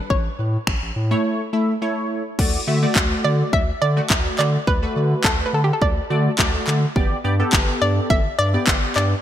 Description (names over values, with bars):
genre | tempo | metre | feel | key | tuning
dance-pop | 105 BPM | 4/4 | straight | D major | A4 = 440 Hz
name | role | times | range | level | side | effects
hollow square pluck | melody | 0.0-9.2 s | G4 to E5 | -24 LUFS | equal | chorus, digital delay
funky polysynth comp | accompaniment | 0.0-9.1 s | G3 to E5 | -24 LUFS | equal | chorus, sidechain pumping
saturated sub bass | bass | 0.1-9.1 s | G1 to D3 | -21 LUFS | equal | sidechain pumping
house drum kit | drums | 0.1-9.1 s | crash cymbal, finger snaps, handclaps, kick drum | -20 LUFS | equal | overdrive, gated reverb
room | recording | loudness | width
light reverb, digital ambience | bright 1980s-style digital production | -17 LUFS | side -11 dB against mid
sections
0.0-2.4 A section; 2.4-9.2 B section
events
none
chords
0.1 A; 2.4 D; 7.0 G